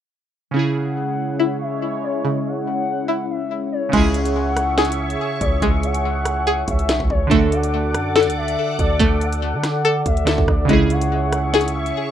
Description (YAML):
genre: hip hop, drill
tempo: 142 BPM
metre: 4/4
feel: half-time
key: C# phrygian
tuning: A4 = 443 Hz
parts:
  - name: glassy digital keys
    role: accompaniment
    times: 0.5-12.1 s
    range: C#3 to A4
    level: -24 LUFS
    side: right 3 dB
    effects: chorus
  - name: sweeping resonant pad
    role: sustained chords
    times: 0.5-12.1 s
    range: G#3 to D6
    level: -26 LUFS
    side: equal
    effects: chorus
  - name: string-like resonator pluck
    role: arpeggios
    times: 0.5-12.1 s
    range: C#3 to A4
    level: -21 LUFS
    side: left 2 dB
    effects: chorus, phaser, ping-pong delay
  - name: gliding portamento lead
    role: second line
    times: 0.8-12.1 s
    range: C#5 to F#5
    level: -26 LUFS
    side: left 4 dB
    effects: chorus, ping-pong delay
  - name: hard-hitting 808-style bass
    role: bass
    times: 3.9-11.9 s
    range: B1 to D3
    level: -23 LUFS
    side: equal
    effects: none
  - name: drill drum kit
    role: drums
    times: 3.9-12.0 s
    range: crash cymbal, hi-hat, kick drum, rim click, snare drum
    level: -22 LUFS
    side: equal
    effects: none
room: little or no reverb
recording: rough home demo mix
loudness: -17 LUFS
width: side -10 dB against mid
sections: 0.6-3.9 A section; 3.9-12.1 B section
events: none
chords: 0.6 C#m; 7.3 D; 10.7 C#m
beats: | 0.55 0.97 1.40 1.82 | 2.24 2.66 3.09 3.51 | 3.93 4.35 4.78 5.20 | 5.62 6.04 6.47 6.89 | 7.31 7.73 8.16 8.58 | 9.00 9.42 9.85 10.27 | 10.69 11.12 11.54 11.96